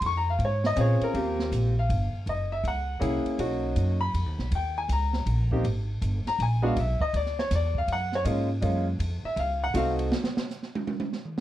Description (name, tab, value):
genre	jazz piano trio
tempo	160 BPM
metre	3/4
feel	swing 65% on 8ths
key	unclear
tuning	A4 = 435 Hz
part	clear upright piano	melody	0.0-10.1 s	Ab3 to Db6	-28 LUFS	left 1 dB	none
part	upright bass	bass	0.0-10.1 s	Gb1 to Bb2	-27 LUFS	equal	none
part	open jazz drum kit	drums	0.0-11.4 s	hi-hat, kick drum, ride cymbal, snare drum, toms	-35 LUFS	right 2 dB	none
room	light reverb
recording	dark, warm production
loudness	-24 LUFS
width	side -13 dB against mid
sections	0.0-1.1 A section; 1.1-10.1 A section; 10.1-11.4 A section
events	upright piano solo 0.0-10.1; drum solo 10.1-11.4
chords	0.0 Bbm9; 1.1 Eb69; 2.3 Gb9; 3.4 Bmaj7; 4.5 Eb7; 5.6 G5; 6.8 E5; 7.9 Gbmaj9; 9.0 F7b9; 10.1 N.C.